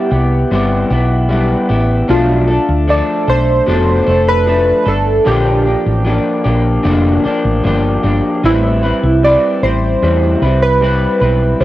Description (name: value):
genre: indie pop, bedroom pop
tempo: 76 BPM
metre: 4/4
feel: straight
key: A minor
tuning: A4 = 440 Hz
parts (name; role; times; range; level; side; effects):
- warm analog keys; melody; 0.0-11.6 s; E4 to D5; -16 LUFS; right 1 dB; wide subtle chorus, cassette tape, tape echo
- electric guitar through a small old amp; accompaniment; 0.0-11.6 s; A2 to B4; -15 LUFS; left 2 dB; analog chorus, warbly pitch drift, cassette tape
- woody fretless electric bass; bass; 0.1-11.6 s; F1 to E2; -15 LUFS; equal; transformer saturation
room: moderate studio ambience, RT60 0.5 s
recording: home recording on cassette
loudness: -11 LUFS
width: side -15 dB against mid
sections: 0.0-11.6 A section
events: none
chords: 0.0 Cmaj7; 2.1 Bm7b5; 5.3 Bb6; 8.4 Am9